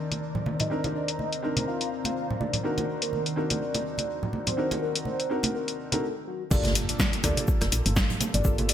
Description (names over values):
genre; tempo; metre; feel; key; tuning
deep house; 124 BPM; 4/4; swing 56% on 16ths; G minor; A4 = 440 Hz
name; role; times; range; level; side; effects
dark analog pad; sustained chords; 0.0-8.7 s; Eb3 to Bb5; -37 LUFS; left 2 dB; chorus, phaser, sidechain pumping
felt-muted upright piano; stabs; 0.0-8.7 s; Bb3 to Bb4; -33 LUFS; equal; sidechain pumping
ethereal airy pad; texture; 0.0-6.0 s; Eb3 to Bb5; -36 LUFS; equal; ensemble chorus, built-in reverb, phaser, sidechain pumping
deep house drum kit; drums; 0.1-8.7 s; crash cymbal, hi-hat, rim click, snare drum; -28 LUFS; left 2 dB; overdrive, low-pass filter on hats, low-pass filter on cymbals, low-pass filter on snare, low-pass filter on room, gated reverb
congas; percussion; 0.1-8.7 s; none; -32 LUFS; right 2 dB; none
warm velvety synth lead; melody; 0.6-8.7 s; F#4 to F5; -33 LUFS; left 1 dB; chorus, tremolo, digital delay
woody FM bass; bass; 6.5-8.7 s; F1 to D2; -28 LUFS; equal; sidechain pumping
electronic kick drum; drums; 6.5-8.6 s; none; -26 LUFS; equal; overdrive
swinging big-band drum kit; drums; 6.5-8.7 s; hi-hat, shaker, snare drum; -37 LUFS; left 3 dB; high-pass filter on hats, high-pass filter on snare, high-pass filter on perc, high-pass filter on room, gated reverb
impact; sound effects; 6.5-8.4 s; none; -36 LUFS; equal; none
room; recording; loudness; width
light reverb, studio ambience; bright 1980s-style digital production; -25 LUFS; side -10 dB against mid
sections
0.0-6.5 A section; 6.5-8.7 B section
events
break 6.0-6.5; drop 6.5-8.7; impact 6.5-8.4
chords
0.0 Cm9; 2.6 D7b9b13; 6.5 Gm9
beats
0.22 | 0.71 1.19 1.67 2.16 | 2.64 3.13 3.61 4.09 | 4.58 5.06 5.54 6.03 | 6.51 7.00 7.48 7.96 | 8.45